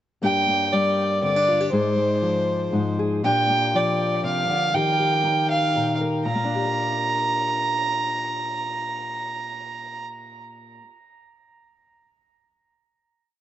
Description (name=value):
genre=indie folk with a building arrangement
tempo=119 BPM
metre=3/4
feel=straight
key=Bb mixolydian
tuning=A4 = 440 Hz
part: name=dark fiddle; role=melody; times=0.2-10.0 s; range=C5 to Bb5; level=-22 LUFS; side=right 2 dB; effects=dub echo
part: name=fingerpicked steel-string acoustic guitar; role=accompaniment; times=0.2-11.0 s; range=G2 to Bb4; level=-25 LUFS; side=left 2 dB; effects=none
room=light reverb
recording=echo-heavy mix, nothing above 8.0 kHz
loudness=-20 LUFS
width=side -12 dB against mid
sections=0.2-6.3 verse; 6.3-9.3 final chord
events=none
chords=0.2 Gm; 1.7 Fm7/Ab; 3.2 Bb6; 4.8 Ebadd9; 6.3 Bb6